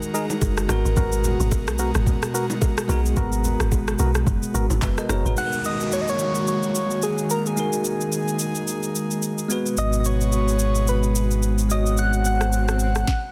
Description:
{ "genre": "amapiano", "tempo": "109 BPM", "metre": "4/4", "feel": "swing 58% on 16ths", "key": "G# minor", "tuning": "A4 = 440 Hz", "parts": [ { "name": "bell-like tine electric piano", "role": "accompaniment", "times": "0.0-13.1 s", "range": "G#3 to D#5", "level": "-30 LUFS", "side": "equal", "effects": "none" }, { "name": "airy breathy pad", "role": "sustained chords", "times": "0.0-13.1 s", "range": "B2 to A#4", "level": "-32 LUFS", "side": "equal", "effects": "chorus" }, { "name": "smooth R&B drum kit", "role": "drums", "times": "0.0-13.2 s", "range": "handclaps, kick drum, rim click, shaker, snare drum", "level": "-28 LUFS", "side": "equal", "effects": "soft clipping on snare" }, { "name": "percussive organ stab", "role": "stabs", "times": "0.1-5.4 s", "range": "B3 to A#4", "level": "-32 LUFS", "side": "equal", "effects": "chorus, tape echo" }, { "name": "bongos and congas", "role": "percussion", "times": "0.3-5.2 s", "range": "none", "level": "-34 LUFS", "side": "equal", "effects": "none" }, { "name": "deep log drum bass", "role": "bass", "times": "0.4-5.4 s", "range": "F#1 to B1", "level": "-25 LUFS", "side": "equal", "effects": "none" }, { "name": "soft struck synth lead", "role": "melody", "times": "5.4-13.3 s", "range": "G#4 to F#5", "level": "-29 LUFS", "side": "equal", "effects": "chorus, tape echo" }, { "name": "downlifter and swell", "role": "sound effects", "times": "5.4-13.1 s", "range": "none", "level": "-38 LUFS", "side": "equal", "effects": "none" }, { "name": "sub bass with octave", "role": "bass", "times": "9.8-13.0 s", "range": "G#1", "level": "-24 LUFS", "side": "equal", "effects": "none" } ], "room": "little or no reverb", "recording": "dense, heavily limited modern master", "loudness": "-22 LUFS", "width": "mono", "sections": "0.0-5.4 A section; 5.4-13.3 B section", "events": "drop 0.0-5.4; swell 11.5-13.3; stop 13.1", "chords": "0.0 F#69; 0.7 G#m9; 5.4 F#69; 9.5 G#m7" }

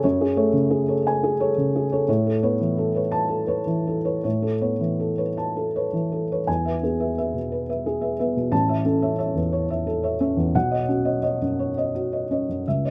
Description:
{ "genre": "neoclassical minimalist piano", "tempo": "53-61 BPM (dotted quarters)", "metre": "6/8", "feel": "rubato", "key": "E major", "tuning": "A4 = 440 Hz", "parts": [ { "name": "felt-muted upright piano", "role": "solo", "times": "0.0-12.9 s", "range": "A1 to A5", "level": "-23 LUFS", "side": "equal", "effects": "none" } ], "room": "light reverb", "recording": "close, detailed microphones", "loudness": "-23 LUFS", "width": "mono", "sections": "0.0-6.5 A section; 6.5-12.9 B section", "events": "none", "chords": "0.0 F#madd9; 2.1 Aadd9; 6.5 E; 8.5 A; 10.5 Badd9" }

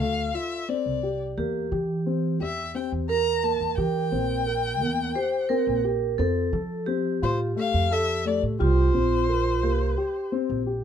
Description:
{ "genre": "contemporary instrumental, chamber music in an uneven meter", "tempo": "174 BPM (eighths)", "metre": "7/8", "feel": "straight", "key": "C mixolydian", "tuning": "A4 = 440 Hz", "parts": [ { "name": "dark violin", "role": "melody", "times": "0.0-10.3 s", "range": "C5 to Bb5", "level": "-29 LUFS", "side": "left 6 dB", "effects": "none" }, { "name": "vibraphone with medium hard mallets", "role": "second line", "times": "0.0-10.6 s", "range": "F4 to C5", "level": "-28 LUFS", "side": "right 4 dB", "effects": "none" }, { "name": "dark grand piano", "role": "arpeggios", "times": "0.0-10.8 s", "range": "A3 to Bb4", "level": "-29 LUFS", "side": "left 4 dB", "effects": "none" }, { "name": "upright bass", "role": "bass", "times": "0.0-10.8 s", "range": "Bb1 to F3", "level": "-27 LUFS", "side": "right 2 dB", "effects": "none" } ], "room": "light reverb", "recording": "dark, warm production", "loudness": "-23 LUFS", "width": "side -8 dB against mid", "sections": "0.0-10.8 A section", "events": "none", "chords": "0.0 Dm7; 1.4 C7/E; 6.2 F; 8.6 C7sus4" }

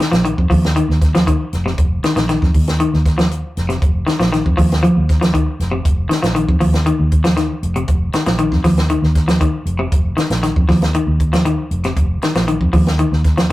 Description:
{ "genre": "afrobeat", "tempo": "118 BPM", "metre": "4/4", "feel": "straight", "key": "unclear", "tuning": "A4 = 439 Hz", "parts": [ { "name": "electric guitar at the edge of break-up", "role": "arpeggios", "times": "0.0-13.5 s", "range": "C3 to F3", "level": "-17 LUFS", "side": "left 1 dB", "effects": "spring reverb" }, { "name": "compact cocktail drum kit", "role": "drums", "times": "0.0-13.5 s", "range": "hi-hat, kick drum, snare drum", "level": "-18 LUFS", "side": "equal", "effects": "none" }, { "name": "vintage muted fingered electric bass", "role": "bass", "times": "0.1-13.5 s", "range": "F1 to F2", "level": "-18 LUFS", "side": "equal", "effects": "none" } ], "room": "moderate small room reverb, RT60 0.5 s", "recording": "rough rehearsal-room recording, warm saturation", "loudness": "-13 LUFS", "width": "side -17 dB against mid", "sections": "0.0-13.5 A section", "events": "none", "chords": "0.0 F5" }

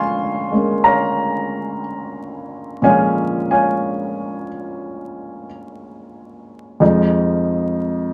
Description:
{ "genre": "solo jazz", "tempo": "60 BPM", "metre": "4/4", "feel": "swing 69% on 8ths", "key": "unclear", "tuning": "A4 = 440 Hz", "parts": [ { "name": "warm grand piano", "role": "solo", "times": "0.0-8.1 s", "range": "F2 to Db6", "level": "-19 LUFS", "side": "equal", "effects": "none" } ], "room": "wet studio reverb, RT60 0.5 s", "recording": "vinyl crackle", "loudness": "-18 LUFS", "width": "mono", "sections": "0.0-8.1 A section", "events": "none", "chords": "0.0 Bbm7; 6.8 Fm7" }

